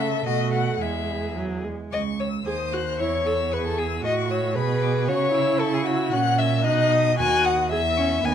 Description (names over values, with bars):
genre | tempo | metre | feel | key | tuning
quick classical-period movement for string quartet | 114 BPM | 2/4 | rubato | C# minor | A4 = 440 Hz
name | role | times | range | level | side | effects
rich violin | melody | 0.0-8.3 s | D#5 to Gb6 | -31 LUFS | left 8 dB | none
warm violin | second line | 0.0-8.3 s | F#4 to G#5 | -24 LUFS | left 5 dB | none
warm viola | accompaniment | 0.0-8.3 s | F#3 to A4 | -28 LUFS | right 4 dB | none
rich cello | bass | 0.0-8.3 s | C#2 to C#3 | -26 LUFS | right 6 dB | none
room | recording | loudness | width
light reverb | close, detailed microphones | -21 LUFS | side -8 dB against mid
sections
0.0-1.9 A section; 1.9-8.3 B section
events
none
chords
0.3 B7; 0.8 E; 1.9 C#m; 2.5 Cdim/Eb; 3.0 C#m/E; 4.0 A; 4.6 G#dim/B; 5.1 C#madd11; 6.1 F#7/A#; 6.7 B; 7.2 D#m; 7.7 C#m/E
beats
0.25 | 0.80 1.36 | 1.92 2.46 | 2.99 3.52 | 4.04 4.56 | 5.08 5.60 | 6.13 6.66 | 7.18 7.71 | 8.25